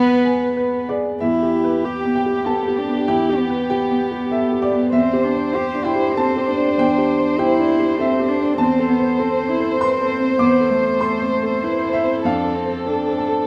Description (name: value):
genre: neoclassical piano and strings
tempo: 97 BPM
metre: 3/4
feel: rubato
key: unclear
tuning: A4 = 440 Hz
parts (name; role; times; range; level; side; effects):
- warm chamber violin section; melody; 0.0-13.5 s; G4 to C5; -25 LUFS; equal; none
- warm cello; second line; 0.0-13.5 s; A3 to G4; -23 LUFS; equal; none
- clear upright piano; accompaniment; 0.0-13.5 s; E2 to D6; -22 LUFS; equal; none
room: moderate lush hall reverb, RT60 2.5 s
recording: rough home demo mix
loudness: -19 LUFS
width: mono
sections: 0.0-1.2 A section; 1.2-13.5 B section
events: none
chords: 0.0 E; 1.2 Em; 4.9 Cadd9/E; 8.6 Amadd9/E; 12.2 F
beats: 0.56 | 1.21 1.84 2.46 | 3.08 3.70 4.32 | 4.93 5.55 6.17 | 6.79 7.39 7.99 | 8.59 9.20 9.81 | 10.41 11.01 11.63 | 12.25 12.87